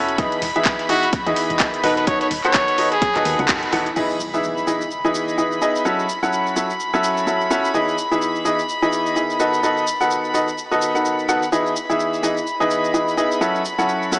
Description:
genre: piano house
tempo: 127 BPM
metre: 4/4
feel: swing 58% on 16ths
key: E major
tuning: A4 = 440 Hz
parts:
  - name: clear chamber violin section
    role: sustained chords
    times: 0.0-14.2 s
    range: B5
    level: -24 LUFS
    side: left 1 dB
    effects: sidechain pumping
  - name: bright upright piano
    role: riff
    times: 0.0-14.2 s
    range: D#3 to F#5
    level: -19 LUFS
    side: equal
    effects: sidechain pumping, digital delay
  - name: solid FM bass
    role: bass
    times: 0.0-3.9 s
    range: D#1 to E2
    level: -31 LUFS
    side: equal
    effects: sidechain pumping
  - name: house drum kit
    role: drums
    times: 0.1-14.2 s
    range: crash cymbal, handclaps, hi-hat, shaker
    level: -26 LUFS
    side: equal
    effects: overdrive
  - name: dusty soul sampler-style drum kit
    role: drums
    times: 0.2-3.9 s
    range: ride cymbal, snare drum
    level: -31 LUFS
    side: equal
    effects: none
  - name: electronic kick drum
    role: drums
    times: 0.2-3.6 s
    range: none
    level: -23 LUFS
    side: equal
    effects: overdrive
  - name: clear trumpet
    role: melody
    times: 0.9-3.4 s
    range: F#4 to C#5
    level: -21 LUFS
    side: equal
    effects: digital delay
  - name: impact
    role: sound effects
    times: 4.0-5.9 s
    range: none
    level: -41 LUFS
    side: equal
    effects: none
room: moderate lush hall reverb, RT60 1.6 s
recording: small speaker sound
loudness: -17 LUFS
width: side -25 dB against mid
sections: 0.0-4.0 A section; 4.0-14.2 B section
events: band accent 3.5; impact 4.0-5.9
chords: 0.2 Emaj7; 1.8 B7/D#; 4.0 Emaj7; 5.9 F#m7; 7.7 Emaj7; 9.4 B7/D#; 11.5 Emaj7; 13.4 F#m7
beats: | 0.18 0.66 1.13 1.60 | 2.07 2.55 3.02 3.49 | 3.96 4.44 4.91 5.38 | 5.85 6.33 6.80 7.27 | 7.74 8.22 8.69 9.16 | 9.63 10.11 10.58 11.05 | 11.52 11.99 12.47 12.94 | 13.41 13.88

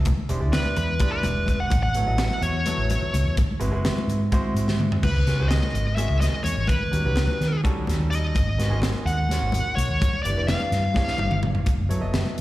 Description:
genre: electric jazz fusion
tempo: 253 BPM (eighths)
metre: 7/8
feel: straight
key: C# minor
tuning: A4 = 436 Hz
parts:
  - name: warm grand piano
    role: accompaniment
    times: 0.0-12.4 s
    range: D#3 to D#5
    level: -32 LUFS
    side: right 2 dB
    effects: slapback echo
  - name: mellow fretless electric bass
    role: bass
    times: 0.0-12.4 s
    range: E1 to D#3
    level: -24 LUFS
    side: equal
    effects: none
  - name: crisp fusion drum kit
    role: drums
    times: 0.1-12.4 s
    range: crash cymbal, hi-hat, kick drum, snare drum, toms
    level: -26 LUFS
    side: equal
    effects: none
  - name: congas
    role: percussion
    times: 0.1-12.4 s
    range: none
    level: -31 LUFS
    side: left 2 dB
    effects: slapback echo
  - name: smooth overdriven lead guitar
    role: melody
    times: 0.5-11.4 s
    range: B4 to F#5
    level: -28 LUFS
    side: equal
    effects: slapback echo, analog delay
room: small room ambience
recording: live gig heard through the venue's PA, recital hall reverb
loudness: -20 LUFS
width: side -16 dB against mid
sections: 0.0-5.0 A section; 5.0-12.4 B section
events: lead electric guitar solo 0.0-5.0; drum fill 4.7-5.0, 11.0-11.7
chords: 0.1 E7#9; 1.7 Aadd9; 3.4 G#7alt; 5.0 C#9sus4; 6.7 D#7alt; 8.4 G#m7; 10.0 G13; 11.7 F#m7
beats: | 0.06 0.29 0.53 0.77 1.01 1.24 1.48 | 1.72 1.96 2.19 2.43 2.67 2.90 3.14 | 3.38 3.62 3.85 4.09 4.33 4.56 4.80 | 5.04 5.28 5.51 5.75 5.99 6.22 6.46 | 6.70 6.93 7.17 7.41 7.65 7.88 8.12 | 8.36 8.59 8.83 9.07 9.30 9.54 9.78 | 10.01 10.25 10.49 10.72 10.96 11.20 11.43 | 11.67 11.91 12.14 12.38

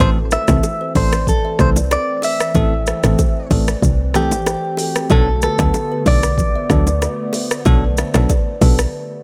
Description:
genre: afrobeats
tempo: 94 BPM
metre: 4/4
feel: straight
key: A dorian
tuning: A4 = 438 Hz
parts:
  - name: direct-recorded clean electric guitar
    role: melody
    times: 0.0-9.2 s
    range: G4 to E5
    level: -23 LUFS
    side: equal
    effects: harmonic tremolo, delay
  - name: bell-like tine electric piano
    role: accompaniment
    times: 0.0-8.8 s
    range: E3 to A4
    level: -25 LUFS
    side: equal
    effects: none
  - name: hollow soft pad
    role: sustained chords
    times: 0.0-9.2 s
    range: D3 to C4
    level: -30 LUFS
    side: equal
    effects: ensemble chorus
  - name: kalimba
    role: riff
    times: 0.0-8.7 s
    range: E4 to E5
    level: -30 LUFS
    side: equal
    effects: delay
  - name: woody log drum bass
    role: bass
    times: 0.0-8.9 s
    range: A1 to D2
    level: -19 LUFS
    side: equal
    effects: none
  - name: afro-pop drum kit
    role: drums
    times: 0.0-8.9 s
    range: hi-hat, kick drum, rim click, shaker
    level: -21 LUFS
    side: equal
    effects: none
  - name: bongos and congas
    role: percussion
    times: 0.3-8.8 s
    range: none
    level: -28 LUFS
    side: equal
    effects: none
room: little or no reverb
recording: none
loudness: -16 LUFS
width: mono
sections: 0.0-9.2 A section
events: break 8.9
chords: 0.0 Am; 5.1 Bm7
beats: | 0.00 0.64 1.27 1.91 | 2.55 3.19 3.83 4.47 | 5.11 5.74 6.38 7.02 | 7.66 8.30 8.93

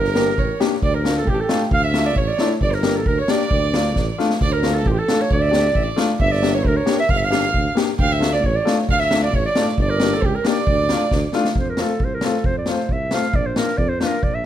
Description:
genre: klezmer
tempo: 134 BPM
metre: 2/4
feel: straight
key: D harmonic minor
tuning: A4 = 440 Hz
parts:
  - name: mellow clarinet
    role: melody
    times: 0.0-14.5 s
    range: F4 to F5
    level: -22 LUFS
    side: right 2 dB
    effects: none
  - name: dark violin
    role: second line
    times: 0.0-11.3 s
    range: G4 to G5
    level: -26 LUFS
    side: right 7 dB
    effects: none
  - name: breathy tuba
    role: bass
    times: 0.0-14.5 s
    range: G1 to F2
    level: -23 LUFS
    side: equal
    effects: none
  - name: street-band drum kit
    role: drums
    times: 0.0-14.3 s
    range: kick drum, snare drum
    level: -22 LUFS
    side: equal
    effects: none
  - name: warm upright piano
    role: accompaniment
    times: 0.2-14.1 s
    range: A3 to G4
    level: -23 LUFS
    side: left 4 dB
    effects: none
room: light reverb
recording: none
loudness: -16 LUFS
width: side -11 dB against mid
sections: 0.0-4.4 A section; 4.4-11.6 A section; 11.6-14.5 B section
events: drum fill 4.0-4.4, 11.1-11.6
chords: 0.0 Gm; 0.8 Dm; 2.6 Gm; 3.5 Dm; 6.2 Gm; 8.0 Dm; 9.8 Gm; 10.7 Dm; 11.6 F; 13.3 Bb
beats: 0.39 | 0.84 1.28 | 1.73 2.18 | 2.62 3.07 | 3.52 3.96 | 4.41 4.86 | 5.30 5.75 | 6.20 6.65 | 7.09 7.54 | 7.99 8.44 | 8.88 9.33 | 9.78 10.22 | 10.67 11.12 | 11.56 12.01 | 12.46 12.90 | 13.35 13.79 | 14.24

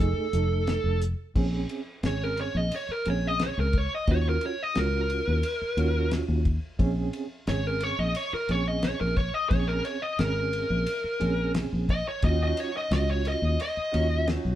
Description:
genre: straight-eighth soul blues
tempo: 88 BPM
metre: 4/4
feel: straight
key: Bb minor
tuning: A4 = 440 Hz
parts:
  - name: smooth overdriven lead guitar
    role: melody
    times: 0.0-14.3 s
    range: A4 to Eb5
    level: -29 LUFS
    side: equal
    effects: none
  - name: mellow reed electric piano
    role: accompaniment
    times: 0.0-14.6 s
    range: A3 to A4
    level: -33 LUFS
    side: right 5 dB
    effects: fast tremolo
  - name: fingered electric bass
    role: bass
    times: 0.0-14.6 s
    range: F1 to Eb2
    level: -27 LUFS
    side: equal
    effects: none
  - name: cloth-damped thuddy drum kit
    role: drums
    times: 0.3-14.4 s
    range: crash cymbal, hi-hat, kick drum, ride cymbal, snare drum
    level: -31 LUFS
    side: left 1 dB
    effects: none
  - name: warm horn section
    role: sustained chords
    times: 12.2-14.6 s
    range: Gb3 to Gb4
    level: -41 LUFS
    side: equal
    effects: none
room: light reverb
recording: band playing live in one room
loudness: -24 LUFS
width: side -12 dB against mid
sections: 0.0-1.4 A section; 1.4-14.6 B section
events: lead electric guitar solo 1.4-14.6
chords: 0.0 F7#9; 1.4 Bbm7; 4.1 Ebm7; 6.8 Bbm7; 12.2 Ebm7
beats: 0.00 0.68 | 1.35 2.04 2.71 3.40 | 4.08 4.75 5.43 6.11 | 6.79 7.47 8.15 8.83 | 9.51 10.19 10.87 11.55 | 12.23 12.91 13.59 14.26

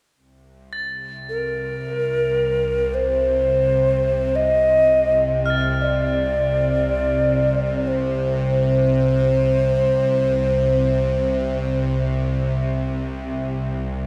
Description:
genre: world meditative, free-time meditation music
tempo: free time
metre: none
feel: none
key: unclear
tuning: A4 = 441 Hz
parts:
  - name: bowed-like drone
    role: drone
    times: 1.0-14.1 s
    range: C2 to C3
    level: -24 LUFS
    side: equal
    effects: built-in reverb
  - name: crotales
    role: texture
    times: 0.7-14.1 s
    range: F6 to A6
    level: -33 LUFS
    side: equal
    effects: none
  - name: breathy alto ocarina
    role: melody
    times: 1.3-11.9 s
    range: Bb4 to Eb5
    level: -22 LUFS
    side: equal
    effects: analog delay
room: wet spring reverb, RT60 2.6 s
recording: none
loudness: -20 LUFS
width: mono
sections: 0.2-14.1 A section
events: none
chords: none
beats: free time

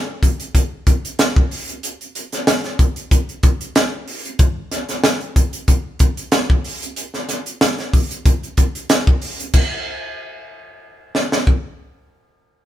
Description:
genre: pop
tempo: 93 BPM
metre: 4/4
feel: swing 54% on 16ths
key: none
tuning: none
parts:
  - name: crisp fusion drum kit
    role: drums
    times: 0.2-11.6 s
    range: crash cymbal, hi-hat, kick drum, snare drum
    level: -16 LUFS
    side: equal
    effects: none
room: light reverb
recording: band playing live in one room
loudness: -16 LUFS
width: side -13 dB against mid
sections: 0.0-9.5 A section; 9.5-12.1 B section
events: none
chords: none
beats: 0.54 1.18 | 1.82 2.47 3.11 3.75 | 4.39 5.04 5.68 6.32 | 6.96 7.61 8.25 8.89 | 9.54 10.18 10.82 11.47

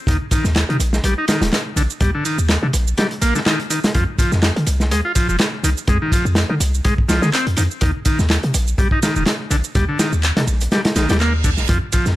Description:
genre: breakbeat, breaks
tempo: 124 BPM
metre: 4/4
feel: swing 55% on 16ths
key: unclear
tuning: A4 = 440 Hz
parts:
  - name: combo organ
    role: riff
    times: 0.1-12.1 s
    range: D3 to F4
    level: -22 LUFS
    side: left 1 dB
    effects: tube saturation, vintage 12-bit sampler grit, ping-pong delay
  - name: warm 808-style bass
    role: bass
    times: 0.1-12.2 s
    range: Eb1 to D3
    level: -18 LUFS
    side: equal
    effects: none
  - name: crunchy breakbeat drum kit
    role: drums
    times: 0.1-12.2 s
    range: hi-hat, kick drum, snare drum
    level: -19 LUFS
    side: equal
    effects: none
  - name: garage drum kit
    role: drums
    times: 0.1-12.1 s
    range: handclaps, ride cymbal, shaker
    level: -25 LUFS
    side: right 2 dB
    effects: none
  - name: reverse cymbal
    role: sound effects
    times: 10.9-11.7 s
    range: none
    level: -28 LUFS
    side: right 6 dB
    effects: none
room: studio ambience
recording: none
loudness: -15 LUFS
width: side -16 dB against mid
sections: 0.0-12.2 A section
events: reverse cymbal 10.9-11.7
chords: 0.1 Eb; 3.9 Fm7; 7.8 Eb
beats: | 0.07 0.56 1.04 1.53 | 2.01 2.50 2.98 3.46 | 3.95 4.43 4.91 5.40 | 5.88 6.37 6.85 7.33 | 7.82 8.30 8.79 9.27 | 9.75 10.24 10.72 11.20 | 11.69

